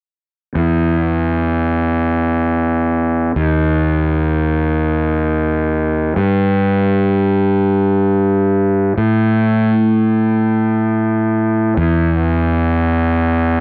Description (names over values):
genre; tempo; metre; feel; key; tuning
rock; free time; none; none; E minor; A4 = 441 Hz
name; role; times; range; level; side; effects
fuzz fingered electric bass; bass; 0.6-13.6 s; D#2 to A2; -16 LUFS; equal; overdrive
room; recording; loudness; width
little or no reverb; dark, warm production; -16 LUFS; mono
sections
0.6-11.8 A section; 11.8-13.6 B section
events
none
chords
none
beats
free time